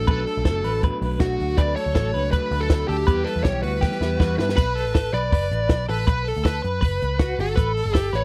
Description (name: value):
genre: jangly indie pop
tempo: 160 BPM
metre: 4/4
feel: straight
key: B minor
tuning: A4 = 440 Hz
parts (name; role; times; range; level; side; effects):
- smooth overdriven lead guitar; melody; 0.0-8.2 s; F#4 to D5; -28 LUFS; equal; slapback echo
- electric guitar through a small old amp; accompaniment; 0.0-4.6 s; B2 to E4; -33 LUFS; equal; none
- twelve-string electric guitar; arpeggios; 0.0-8.2 s; F#4 to B4; -32 LUFS; equal; tremolo
- vintage muted picked electric bass; bass; 0.0-8.2 s; F#1 to G2; -28 LUFS; equal; none
- compact cocktail drum kit; drums; 0.1-8.2 s; crash cymbal, hi-hat, kick drum, snare drum; -23 LUFS; equal; none
- rich studio violin section; second line; 4.0-4.6 s; E4 to F#4; -40 LUFS; equal; none
room: small room ambience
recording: dry, close 1970s-style studio recording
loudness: -22 LUFS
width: mono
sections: 0.0-4.6 A section; 4.6-8.2 B section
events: drum fill 3.8-4.6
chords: 0.1 Bm7; 1.6 D; 3.1 Em; 4.6 Bm; 7.6 Asus2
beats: | 0.08 0.46 0.83 1.21 | 1.58 1.96 2.33 2.71 | 3.08 3.46 3.83 4.21 | 4.58 4.96 5.33 5.70 | 6.08 6.45 6.83 7.20 | 7.57 7.95